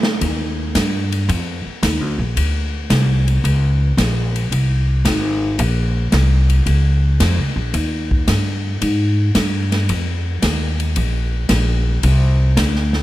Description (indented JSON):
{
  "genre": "jazz, big band swing",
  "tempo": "112 BPM",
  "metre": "4/4",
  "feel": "swing 69% on 8ths",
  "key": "Eb major",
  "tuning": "A4 = 440 Hz",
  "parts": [
    { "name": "swinging big-band drum kit", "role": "drums", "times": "0.0-13.0 s", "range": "hi-hat, kick drum, ride cymbal, snare drum", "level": "-22 LUFS", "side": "equal", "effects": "none" },
    { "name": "upright bass", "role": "bass", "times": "0.2-13.0 s", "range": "Ab1 to Ab2", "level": "-16 LUFS", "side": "equal", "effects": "none" }
  ],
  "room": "light reverb",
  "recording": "none",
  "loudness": "-15 LUFS",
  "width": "side -16 dB against mid",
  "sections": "0.2-13.0 A section",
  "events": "none",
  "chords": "none",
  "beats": "| 0.22 0.76 1.29 1.83 | 2.37 2.90 3.44 3.98 | 4.51 5.05 5.59 6.13 | 6.66 7.20 7.74 8.28 | 8.81 9.35 9.89 10.42 | 10.96 11.50 12.03 12.57"
}